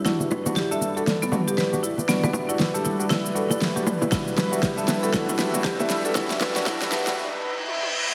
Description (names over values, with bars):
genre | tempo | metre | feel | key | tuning
afro house | 118 BPM | 4/4 | swing 60% on 16ths | E minor | A4 = 443 Hz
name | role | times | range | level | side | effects
marimba with hard mallets | arpeggios | 0.0-7.1 s | B3 to E5 | -31 LUFS | equal | sidechain pumping, delay
warm analog pad | sustained chords | 0.1-8.1 s | G3 to E5 | -31 LUFS | equal | chorus, sidechain pumping
barky tine electric piano | stabs | 0.1-7.2 s | G3 to A4 | -33 LUFS | equal | overdrive, subtle chorus, sidechain pumping, delay
deep house drum kit | drums | 0.1-8.1 s | shaker, snare drum, toms | -29 LUFS | equal | overdrive
riser and reverse cymbal | sound effects | 5.3-8.1 s | none | -35 LUFS | equal | none
bongos | percussion | 0.2-7.2 s | none | -32 LUFS | equal | none
electronic kick drum | drums | 4.1-6.8 s | none | -33 LUFS | equal | overdrive
room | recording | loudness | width
wet lush hall reverb, RT60 1.8 s, digital ambience | dreamy mix soaked in reverb, high-pass filter | -24 LUFS | mono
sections
0.1-8.1 A section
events
build-up 0.1-8.1; drum fill 0.1-7.2, 7.7-8.1; filter sweep 0.1-8.1; reverse cymbal 7.2-8.1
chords
0.1 Em7